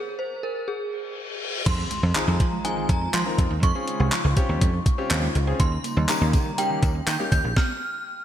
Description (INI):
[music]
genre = dance-pop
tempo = 122 BPM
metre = 4/4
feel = straight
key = F minor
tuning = A4 = 439 Hz
[part]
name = synth chime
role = melody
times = 0.0-8.2 s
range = Ab4 to G6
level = -29 LUFS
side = equal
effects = ensemble chorus, tremolo, ping-pong delay
[part]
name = reverse cymbal and impact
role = sound effects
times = 1.0-3.6 s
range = none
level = -34 LUFS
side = left 2 dB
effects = none
[part]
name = airy breathy pad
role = sustained chords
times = 1.7-7.5 s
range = Db3 to F4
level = -35 LUFS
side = equal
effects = chorus, sidechain pumping
[part]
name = mallet-like synth pluck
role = arpeggios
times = 1.7-7.5 s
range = Eb3 to F4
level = -36 LUFS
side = right 8 dB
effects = chorus, sidechain pumping, ping-pong delay
[part]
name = dry thumbed slap bass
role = bass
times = 1.7-7.5 s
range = Bb1 to F3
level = -24 LUFS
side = equal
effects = sidechain pumping
[part]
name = clean 12-bit digital drum machine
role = drums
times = 1.7-7.7 s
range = crash cymbal, handclaps, hi-hat, kick drum, snare drum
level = -23 LUFS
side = equal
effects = gated reverb
[part]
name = clear concert grand piano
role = accompaniment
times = 2.2-7.5 s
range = Bb3 to Bb4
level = -31 LUFS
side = left 4 dB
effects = sidechain pumping
[part]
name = tambourine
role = percussion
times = 5.8-7.4 s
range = none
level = -40 LUFS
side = left 7 dB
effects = none
[sound]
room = light reverb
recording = bright 1980s-style digital production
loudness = -21 LUFS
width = side -10 dB against mid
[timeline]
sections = 0.0-1.7 A section; 1.7-8.2 B section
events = stop 0.0-1.7, 7.6-8.2; reverse cymbal 1.0-1.7; impact 1.7-3.6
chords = 0.0 N.C.; 1.7 Fm7; 3.6 Dbmaj7; 5.6 Eb7; 7.6 N.C.